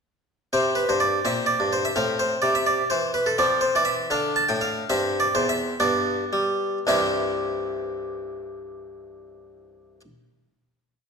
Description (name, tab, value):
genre	classical, baroque-style suite movement for harpsichord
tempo	52-86 BPM (dotted quarters)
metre	6/8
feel	rubato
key	C major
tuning	A4 = 441 Hz
part	harpsichord	solo	0.5-10.0 s	C2 to A5	-21 LUFS	equal	none
room	moderate recital hall reverb, RT60 1.3 s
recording	none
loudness	-21 LUFS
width	side -5 dB against mid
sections	0.5-6.9 A section; 6.9-11.1 final chord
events	slowing down 2.7-6.9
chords	0.5 C5; 1.2 C5/Bb; 2.0 Amadd11; 3.4 F5; 4.1 D5; 4.9 C/G; 5.8 G; 6.9 C